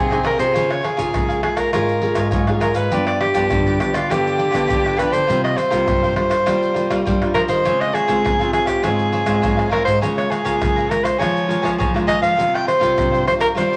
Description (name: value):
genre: samba and choro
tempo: 102 BPM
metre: 4/4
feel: straight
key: unclear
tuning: A4 = 440 Hz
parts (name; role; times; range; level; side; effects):
- clear soprano saxophone; melody; 0.0-13.8 s; F4 to G5; -21 LUFS; equal; none
- cavaquinho; accompaniment; 0.0-13.8 s; F4 to Bb5; -28 LUFS; equal; none
- nylon-string guitar; accompaniment; 0.0-13.8 s; G2 to Ab4; -26 LUFS; equal; none
- nylon-string guitar; bass; 0.0-13.8 s; G2 to G3; -26 LUFS; equal; none
- tube shaker, pandeiro, tamborim and surdo; percussion; 0.1-13.8 s; none; -27 LUFS; equal; none
room: moderate large studio reverb, RT60 0.8 s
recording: vinyl crackle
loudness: -18 LUFS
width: mono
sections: 0.0-13.8 A section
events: none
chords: 0.0 Fm7; 0.6 Db6; 2.9 G7; 5.3 C7sus4; 7.7 Dbmaj7; 10.0 Bbm7/Db; 12.4 C7sus4